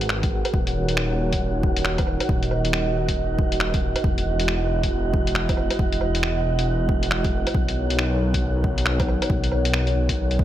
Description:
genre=future garage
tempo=137 BPM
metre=4/4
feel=swing 62% on 16ths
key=unclear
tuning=A4 = 445 Hz
part: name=dark analog pad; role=sustained chords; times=0.0-10.4 s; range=G#3 to D#5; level=-27 LUFS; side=right 2 dB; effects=chorus, sidechain pumping
part: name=swelling detuned saw bass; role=bass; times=0.0-10.4 s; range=D#1 to B1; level=-24 LUFS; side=equal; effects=sidechain pumping
part: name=lo-fi sampler-style drum kit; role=drums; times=0.0-10.4 s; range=finger snaps, hi-hat, woodblock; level=-27 LUFS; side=equal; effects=studio reverb
part: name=wind-like tuned noise texture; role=texture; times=0.0-10.4 s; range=F#4 to F#5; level=-32 LUFS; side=equal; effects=built-in reverb
part: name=electronic kick drum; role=drums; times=0.2-10.4 s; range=none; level=-24 LUFS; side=equal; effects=overdrive, studio reverb
room=light reverb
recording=none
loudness=-20 LUFS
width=side -12 dB against mid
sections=0.0-10.4 A section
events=none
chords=0.0 G#m9; 0.5 D#m7; 4.0 Emaj9; 7.5 Bmaj9

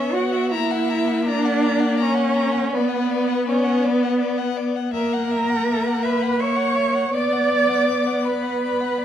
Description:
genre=classical, slow romantic movement for string quartet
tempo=81 BPM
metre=3/4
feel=rubato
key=B minor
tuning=A4 = 440 Hz
part: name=warm violin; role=melody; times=0.0-9.0 s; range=C#5 to A#5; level=-29 LUFS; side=left 11 dB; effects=none
part: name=rich violin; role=second line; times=0.0-9.0 s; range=B4 to D6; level=-29 LUFS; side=left 7 dB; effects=none
part: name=warm viola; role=accompaniment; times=0.0-9.0 s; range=A#3 to B3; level=-22 LUFS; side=left 2 dB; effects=none
part: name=warm cello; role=bass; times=0.0-9.0 s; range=B3 to D5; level=-22 LUFS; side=right 4 dB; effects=none
room=moderate recital hall reverb, RT60 1.4 s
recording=none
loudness=-18 LUFS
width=side -10 dB against mid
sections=0.0-9.0 A section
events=none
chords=0.0 Bsus2; 0.5 F#/A#; 2.7 Bm; 5.0 F#7/A#; 7.1 Bm

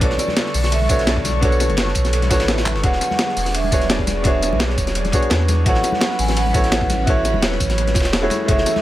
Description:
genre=liquid drum and bass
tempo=170 BPM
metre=4/4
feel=swing 53% on 16ths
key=unclear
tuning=A4 = 437 Hz
part: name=vibraphone with hard mallets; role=melody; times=0.0-8.8 s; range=C#5 to G#5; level=-23 LUFS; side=right 2 dB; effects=analog delay
part: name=clear grand piano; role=accompaniment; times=0.0-8.8 s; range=A3 to D5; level=-23 LUFS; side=equal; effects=tape echo
part: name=airy breathy pad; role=sustained chords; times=0.0-8.8 s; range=D3 to C#6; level=-28 LUFS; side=equal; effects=chorus, phaser, sidechain pumping
part: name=warm sub bass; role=bass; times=0.0-8.6 s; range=E1 to E2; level=-21 LUFS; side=equal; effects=none
part: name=breakbeat sampler-style drum kit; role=drums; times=0.0-8.7 s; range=handclaps, hi-hat, snare drum, tambourine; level=-23 LUFS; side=equal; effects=dub echo
part: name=crunchy breakbeat drum kit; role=drums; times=0.0-8.8 s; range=hi-hat, ride cymbal, snare drum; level=-27 LUFS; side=equal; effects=high-pass filter on cymbals, high-pass filter on hats, high-pass filter on snare, high-pass filter on room
part: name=electronic kick drum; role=drums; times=0.0-8.6 s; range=none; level=-20 LUFS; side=equal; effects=none
part: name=bongos and congas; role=percussion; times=0.2-8.8 s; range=none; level=-30 LUFS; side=left 4 dB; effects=dub echo
part: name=swell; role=sound effects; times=2.2-2.8 s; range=none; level=-33 LUFS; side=right 2 dB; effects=none
room=light reverb, small room ambience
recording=echo-heavy mix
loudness=-15 LUFS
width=side -14 dB against mid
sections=0.0-8.8 A section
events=swell 2.2-2.8; drum fill 2.7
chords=0.0 Bm9; 2.8 E13; 5.7 A69; 8.3 F#m9

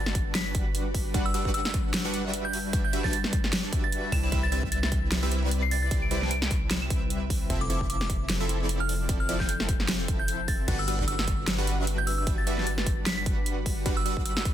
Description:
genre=future bass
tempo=151 BPM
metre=4/4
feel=swing 56% on 16ths, half-time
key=G major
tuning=A4 = 440 Hz
part: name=glassy synth bell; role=melody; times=0.0-14.4 s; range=D6 to E7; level=-34 LUFS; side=right 1 dB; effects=chorus, phaser, sidechain pumping, tape echo
part: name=ethereal airy pad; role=sustained chords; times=0.0-14.5 s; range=C3 to B4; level=-38 LUFS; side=left 2 dB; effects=ensemble chorus, built-in reverb, sidechain pumping
part: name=supersaw stab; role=riff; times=0.0-14.5 s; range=F3 to A5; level=-34 LUFS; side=right 1 dB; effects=sidechain pumping
part: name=long sustained 808-style bass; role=bass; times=0.0-14.5 s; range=F1 to C2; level=-31 LUFS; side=equal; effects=tube saturation, sidechain pumping
part: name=big-room dance drum kit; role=drums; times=0.1-14.5 s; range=crash cymbal, hi-hat, snare drum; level=-31 LUFS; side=equal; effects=none
part: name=electronic kick drum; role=drums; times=0.1-14.5 s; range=none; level=-29 LUFS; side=equal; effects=none
room=light reverb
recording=dense, heavily limited modern master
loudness=-25 LUFS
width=side -11 dB against mid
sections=0.0-14.5 A section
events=none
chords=0.0 Gmaj7; 4.1 Cmaj7; 7.5 Fmaj7; 10.7 Gmaj7

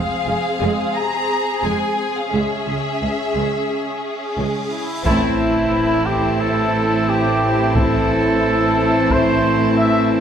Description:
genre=cinematic, epic orchestral film score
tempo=89 BPM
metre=4/4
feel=straight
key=unclear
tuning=A4 = 440 Hz
part: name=rich symphonic violin section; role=melody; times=0.0-10.2 s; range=E5 to Bb5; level=-27 LUFS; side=left 2 dB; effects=none
part: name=rich studio violin section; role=second line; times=0.0-10.2 s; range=E4 to Ab4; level=-25 LUFS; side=left 2 dB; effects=none
part: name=rich symphonic viola section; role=accompaniment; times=0.0-10.2 s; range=Ab3 to C#4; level=-27 LUFS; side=right 1 dB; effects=none
part: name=warm symphonic double bass section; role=bass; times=0.0-10.2 s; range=F1 to C#2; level=-27 LUFS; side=right 2 dB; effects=none
part: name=clear symphonic cello section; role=bass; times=0.3-10.2 s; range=C#2 to A2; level=-25 LUFS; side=right 2 dB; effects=none
part: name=warm French horn section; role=sustained chords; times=0.9-10.2 s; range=C3 to Ab4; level=-22 LUFS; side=left 1 dB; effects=none
part: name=cymbal swell and sub drop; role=sound effects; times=4.1-7.8 s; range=none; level=-33 LUFS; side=equal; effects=none
part: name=bright trumpet section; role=stabs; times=4.7-10.1 s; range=E4 to E5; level=-20 LUFS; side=equal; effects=none
part: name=pipe organ, clarinet reed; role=sustained chords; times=5.0-10.2 s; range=C4 to A5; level=-26 LUFS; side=left 2 dB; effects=none
part: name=bright trombone section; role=sustained chords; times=5.1-10.2 s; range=E3 to A3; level=-24 LUFS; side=right 3 dB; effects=none
part: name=taiko ensemble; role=drums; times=5.1-9.7 s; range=none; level=-24 LUFS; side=equal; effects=none
room=moderate recital hall reverb, RT60 1.6 s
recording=none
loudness=-16 LUFS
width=side -8 dB against mid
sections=0.0-5.1 A section; 5.1-10.2 B section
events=cymbal swell 4.1-5.1; band accent 5.1-5.7; impact 5.1-7.8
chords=0.0 Fm; 2.3 C#m; 5.1 Am

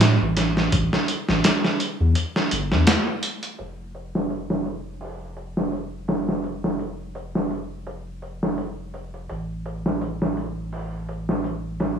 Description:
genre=trip hop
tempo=84 BPM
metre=4/4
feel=swing 55% on 16ths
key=unclear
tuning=A4 = 439 Hz
part: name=round analog bass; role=bass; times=0.0-12.0 s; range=F1 to A2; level=-27 LUFS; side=equal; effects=none
part: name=trip hop sampler-style drum kit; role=drums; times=0.0-12.0 s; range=hi-hat, kick drum, snare drum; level=-22 LUFS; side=equal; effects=low-pass filter on hats, low-pass filter on kick, low-pass filter on snare, low-pass filter on room
room=light reverb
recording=studio ambience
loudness=-22 LUFS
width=side -8 dB against mid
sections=0.0-3.6 A section; 3.6-12.0 B section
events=none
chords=none

